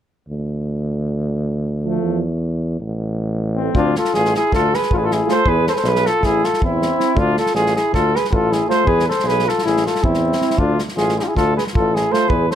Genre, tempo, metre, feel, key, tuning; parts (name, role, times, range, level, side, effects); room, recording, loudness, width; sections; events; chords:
balkan folk, Balkan brass band; 315 BPM (eighths); 9/8; straight; D dorian sharp4; A4 = 441 Hz
warm tuba; bass; 0.3-12.5 s; A1 to E2; -21 LUFS; equal
brilliant trombone; accompaniment; 1.8-12.3 s; A3 to F4; -26 LUFS; left 8 dB
mellow euphonium; accompaniment; 1.9-12.3 s; F3 to C4; -24 LUFS; right 10 dB
loose indie drum kit; percussion; 3.7-12.6 s; kick drum, snare drum; -23 LUFS; equal
dark cornet; melody; 3.8-12.6 s; E4 to C5; -18 LUFS; right 2 dB
warm flugelhorn; second line; 3.8-12.6 s; C4 to A4; -22 LUFS; left 6 dB
little or no reverb; close, detailed microphones; -16 LUFS; side -10 dB against mid
0.3-3.7 A section; 3.7-12.6 B section
0.3 N.C.; 2.0 Fmaj7/E; 2.8 Am; 3.7 Dm; 5.4 E5; 6.2 Am; 7.2 Dm; 8.9 E5; 9.6 Am; 10.6 Dm